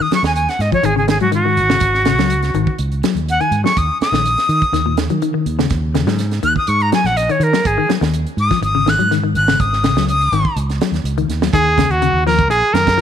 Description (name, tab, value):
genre	afrobeat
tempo	124 BPM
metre	4/4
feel	straight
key	Eb minor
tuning	A4 = 440 Hz
part	breathy bright jazz flute	melody	0.0-10.6 s	Gb4 to Gb6	-16 LUFS	equal	none
part	semi-hollow electric guitar	arpeggios	0.0-13.0 s	Bb2 to Gb3	-21 LUFS	left 11 dB	none
part	fingered electric bass	bass	0.1-13.0 s	Ab1 to Eb3	-19 LUFS	right 1 dB	none
part	tight funk drum kit	drums	0.1-13.0 s	hi-hat, kick drum, snare drum	-21 LUFS	right 6 dB	none
part	bright trumpet	melody	11.5-13.0 s	Gb4 to Bb4	-14 LUFS	right 1 dB	none
room	light reverb, studio reverb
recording	1960s-style stereo with parts hard left and right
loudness	-13 LUFS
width	side -9 dB against mid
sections	0.0-11.5 A section; 11.5-13.0 B section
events	flute solo 0.0-11.5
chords	0.0 Ab5; 3.8 Eb5; 7.7 Ab5; 11.5 Ebm7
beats	0.36 0.85 1.34 | 1.82 2.31 2.79 3.28 | 3.77 4.25 4.74 5.22 | 5.71 6.20 6.68 7.17 | 7.65 8.14 8.63 9.11 | 9.60 10.08 10.57 11.05 | 11.54 12.02 12.51 12.99